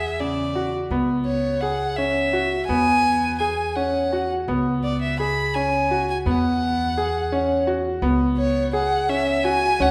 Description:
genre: contemporary instrumental, chamber music in an uneven meter.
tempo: 168 BPM (eighths).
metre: 5/8.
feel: straight.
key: unclear.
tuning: A4 = 440 Hz.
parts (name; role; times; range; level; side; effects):
clear violin; melody; 0.0-9.9 s; C#5 to B5; -26 LUFS; equal; none.
bright grand piano; arpeggios; 0.0-9.9 s; C#3 to G#4; -25 LUFS; equal; none.
upright bass; bass; 0.0-9.9 s; C#2 to E2; -32 LUFS; equal; none.
room: wet concert hall reverb, RT60 2.3 s.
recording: recorded in a church or concert hall.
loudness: -22 LUFS.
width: mono.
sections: 0.0-9.9 A section.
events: none.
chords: 0.0 E69; 0.9 C#m7; 2.7 E69; 4.5 C#5; 6.3 E69; 8.0 C#5.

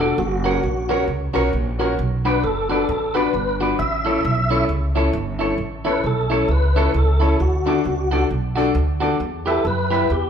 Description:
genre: ska.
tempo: 133 BPM.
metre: 4/4.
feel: swing 59% on 8ths.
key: unclear.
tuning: A4 = 442 Hz.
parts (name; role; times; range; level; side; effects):
mellow tonewheel organ; melody; 0.0-10.3 s; F#4 to E5; -23 LUFS; equal; chorus vibrato, fast rotary speaker.
clean electric guitar; accompaniment; 0.0-10.1 s; E4 to E5; -25 LUFS; right 4 dB; spring reverb, tape echo.
warm upright piano; stabs; 0.0-10.1 s; C#4 to B4; -23 LUFS; left 5 dB; none.
upright bass; bass; 0.0-10.3 s; E1 to F#2; -22 LUFS; right 1 dB; none.
room: moderate large studio reverb, RT60 1.1 s.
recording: band playing live in one room.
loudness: -17 LUFS.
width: side -8 dB against mid.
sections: 0.0-10.3 A section.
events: none.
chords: 0.2 F#; 2.0 Bm; 3.8 A; 7.4 D; 9.2 Em.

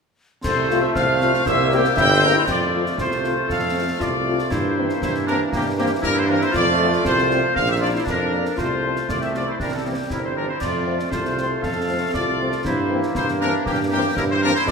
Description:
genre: military-style march for wind band.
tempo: 118 BPM.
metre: 2/4.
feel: straight.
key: F major.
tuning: A4 = 440 Hz.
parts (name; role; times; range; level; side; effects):
warm trumpet section; melody; 0.4-14.7 s; G4 to G5; -23 LUFS; left 1 dB; none.
mellow hollow piccolo; second line; 0.4-2.4 s; C6 to G6; -23 LUFS; left 1 dB; none.
warm woodwind section; second line; 0.4-14.7 s; Bb3 to E5; -26 LUFS; left 1 dB; none.
clear trombone section; sustained chords; 0.4-14.7 s; E3 to C4; -28 LUFS; right 1 dB; none.
warm tuba; bass; 0.4-14.7 s; G1 to G2; -24 LUFS; right 3 dB; none.
concert snare drum, clash cymbals and concert bass drum; drums; 0.4-14.7 s; none; -30 LUFS; equal; none.
mellow French horn section; accompaniment; 0.7-14.5 s; E3 to G4; -28 LUFS; left 4 dB; none.
room: wet scoring stage reverb, RT60 1.9 s.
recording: minimal, uncompressed stereo recording.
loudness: -18 LUFS.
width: side -5 dB against mid.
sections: 0.4-2.5 A section; 2.5-14.7 B section.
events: none.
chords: 0.4 F/C; 1.5 C7; 2.5 F; 4.5 C7/G; 6.5 F; 7.6 Bb; 8.6 F/C; 9.6 C; 10.6 F; 12.6 C7/G.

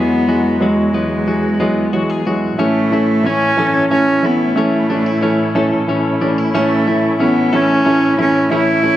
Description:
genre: six-eight pop ballad.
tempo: 61 BPM (dotted quarters).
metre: 6/8.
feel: straight.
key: A major.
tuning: A4 = 441 Hz.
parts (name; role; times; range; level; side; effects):
warm cello; melody; 0.0-9.0 s; G#3 to E4; -16 LUFS; equal; none.
warm baby grand piano; accompaniment; 0.0-9.0 s; E3 to C#4; -16 LUFS; right 1 dB; none.
muted studio string section; sustained chords; 0.0-9.0 s; E2 to E4; -22 LUFS; left 1 dB; none.
twelve-string electric guitar; arpeggios; 0.0-9.0 s; F#3 to A4; -24 LUFS; left 6 dB; tape echo.
room: moderate recital hall reverb, RT60 1.6 s, small room ambience.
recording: dark, warm production.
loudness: -12 LUFS.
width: side -13 dB against mid.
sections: 0.0-2.6 A section; 2.6-9.0 B section.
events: none.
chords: 0.0 Eadd9; 2.6 A.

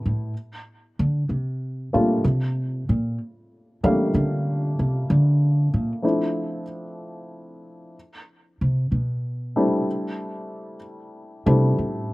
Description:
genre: jazz ballad.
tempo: 63 BPM.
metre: 4/4.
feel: swing 69% on 8ths.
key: unclear.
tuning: A4 = 437 Hz.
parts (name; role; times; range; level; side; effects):
dark baby grand piano; accompaniment; 0.0-12.1 s; F3 to F5; -24 LUFS; left 1 dB; slapback echo.
upright bass; bass; 0.1-12.1 s; A2 to E3; -21 LUFS; equal; none.
room: little or no reverb.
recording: recorded outdoors, with no room sound.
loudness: -20 LUFS.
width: side -20 dB against mid.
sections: 0.0-12.1 A section.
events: upright bass solo 0.0-12.1.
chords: 0.3 D5; 2.2 Gm9; 6.0 Dm7; 7.9 G69; 9.9 C69.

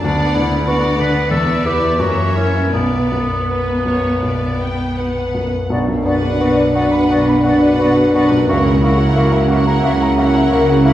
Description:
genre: classical, romantic movement for piano and orchestra.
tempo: 78-95 BPM.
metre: 4/4.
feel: rubato.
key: B minor.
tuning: A4 = 439 Hz.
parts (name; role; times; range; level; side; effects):
clear grand piano; melody; 0.0-10.9 s; B1 to B5; -17 LUFS; left 1 dB; none.
warm studio violin section; melody; 0.0-10.9 s; B4 to G5; -27 LUFS; left 2 dB; none.
bright clarinet; second line; 0.0-10.9 s; B3 to B4; -23 LUFS; equal; none.
warm studio violin section; second line; 0.0-10.9 s; A#4 to D5; -26 LUFS; left 2 dB; none.
rich studio viola section; accompaniment; 0.0-10.9 s; A#3 to E4; -24 LUFS; right 1 dB; none.
rich studio cello section; bass; 0.0-10.9 s; D2 to C#3; -20 LUFS; right 2 dB; none.
silver concert flute; second line; 5.7-10.9 s; D5 to E5; -27 LUFS; left 3 dB; none.
warm bassoon; accompaniment; 5.7-10.9 s; A#3 to B3; -25 LUFS; equal; none.
warm French horn section; sustained chords; 5.7-10.9 s; A#3 to E4; -20 LUFS; left 1 dB; none.
warm trombone section; sustained chords; 5.7-10.9 s; F#2 to F#3; -26 LUFS; right 4 dB; none.
rich studio double bass section; bass; 5.7-10.9 s; B1 to C#2; -22 LUFS; right 1 dB; none.
room: wet recital hall reverb, RT60 1.4 s.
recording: heard from further back in the room.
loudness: -13 LUFS.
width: side -13 dB against mid.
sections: 0.0-5.7 A section; 5.7-10.9 B section.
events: none.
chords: 0.0 Bm/D; 1.3 Em7; 2.0 F#7; 2.7 Bm; 8.5 F#7/C#.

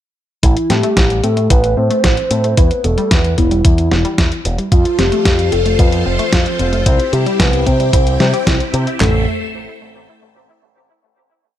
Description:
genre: italo disco.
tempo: 112 BPM.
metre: 4/4.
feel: straight.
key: A minor.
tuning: A4 = 440 Hz.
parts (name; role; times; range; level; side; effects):
soft octave-layered synth lead; melody; 0.4-9.3 s; E4 to C5; -18 LUFS; left 1 dB; chorus, phaser, tape echo.
analog pluck; arpeggios; 0.4-9.3 s; G3 to C5; -23 LUFS; left 2 dB; chorus, ping-pong delay.
picked electric bass with an envelope filter; bass; 0.4-9.3 s; E1 to C3; -17 LUFS; equal; tube saturation.
clean 12-bit digital drum machine; drums; 0.4-9.1 s; handclaps, kick drum, snare drum, toms; -14 LUFS; equal; none.
clean 12-bit digital drum machine; drums; 0.4-9.0 s; hi-hat, snare drum; -19 LUFS; equal; none.
phased string machine; sustained chords; 4.7-9.3 s; F3 to E5; -22 LUFS; equal; ensemble chorus, phaser.
room: light reverb.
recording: none.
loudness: -12 LUFS.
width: side -11 dB against mid.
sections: 0.4-9.0 verse; 9.0-11.1 final chord.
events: none.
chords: 0.4 Am; 2.6 Em; 4.7 F; 6.9 C; 9.0 Am.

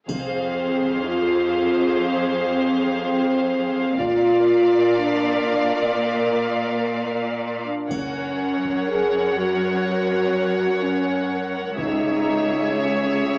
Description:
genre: cinematic, epic orchestral film score.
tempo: 123 BPM.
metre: 4/4.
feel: straight.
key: F phrygian.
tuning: A4 = 442 Hz.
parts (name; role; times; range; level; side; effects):
rich symphonic violin section; melody; 0.1-13.4 s; Fb5 to Gb5; -33 LUFS; equal; none.
rich symphonic violin section; second line; 0.1-13.4 s; C5 to D5; -30 LUFS; equal; none.
warm symphonic viola section; accompaniment; 0.1-13.4 s; Ab4 to Bb4; -32 LUFS; equal; none.
mellow French horn section; sustained chords; 0.1-13.4 s; Bb3 to Ab4; -24 LUFS; equal; none.
clear symphonic cello section; bass; 0.1-13.4 s; Db2 to Bb2; -30 LUFS; equal; none.
warm symphonic double bass section; bass; 0.1-0.5, 4.0-4.4, 7.9-8.4, 11.8-12.2 s; F1 to Db2; -38 LUFS; equal; none.
solo taiko drums; drums; 0.1-1.1, 4.0-4.9, 7.9-12.7 s; none; -42 LUFS; equal; none.
triangle; percussion; 0.1-1.0, 7.9-8.8 s; none; -46 LUFS; equal; none.
room: wet recital hall reverb, RT60 1.6 s.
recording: AM radio sound.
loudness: -21 LUFS.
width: mono.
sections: 0.1-13.4 A section.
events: none.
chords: 0.1 Fm; 4.0 Bb; 7.9 Gb; 11.8 Dbm.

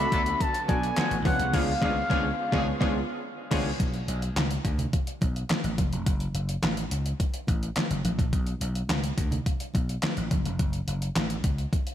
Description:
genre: early-eighties boogie funk.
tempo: 106 BPM.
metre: 4/4.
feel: straight.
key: unclear.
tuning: A4 = 441 Hz.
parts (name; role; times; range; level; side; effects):
expressive synth lead; melody; 0.0-2.6 s; E#5 to B5; -29 LUFS; left 2 dB; chorus, slapback echo, analog delay.
funky polysynth comp; accompaniment; 0.0-3.7 s; B3 to E5; -31 LUFS; equal; chorus, slapback echo.
warm studio string section; sustained chords; 0.0-3.8 s; D3 to F#4; -40 LUFS; equal; none.
vintage slap bass; bass; 0.0-11.6 s; E#1 to D2; -30 LUFS; equal; none.
clear horn section; second line; 0.1-3.7 s; D3 to A4; -37 LUFS; right 1 dB; slapback echo, analog delay.
detuned 8-bit digital drum machine; drums; 0.1-11.9 s; crash cymbal, handclaps, hi-hat, kick drum, snare drum; -28 LUFS; equal; overdrive.
congas; percussion; 0.4-11.9 s; none; -36 LUFS; right 2 dB; none.
room: light reverb, digital ambience.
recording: none.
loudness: -25 LUFS.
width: side -11 dB against mid.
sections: 0.0-3.8 A section; 3.8-11.9 B section.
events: band accent 1.5-3.8.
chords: 0.0 Bm7; 1.3 C#7b9; 3.8 Bm; 5.8 F#m; 8.3 Bm; 10.3 F#m.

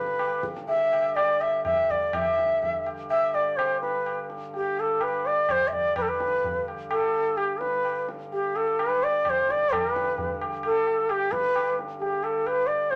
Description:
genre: indian classical, Hindustani.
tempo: 127 BPM.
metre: 4/4.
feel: straight.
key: G raga bilaval.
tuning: A4 = 445 Hz.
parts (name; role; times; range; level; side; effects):
bright bansuri; melody; 0.0-13.0 s; G4 to E5; -26 LUFS; equal; none.
pedal harmonium; drone; 0.0-13.0 s; G2 to D3; -41 LUFS; equal; none.
tabla; percussion; 0.1-13.0 s; none; -35 LUFS; equal; none.
room: moderate studio reverb, RT60 0.6 s.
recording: none.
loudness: -26 LUFS.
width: mono.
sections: 0.0-6.0 A section; 6.0-13.0 B section.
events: speeding up 0.0-13.0.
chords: none.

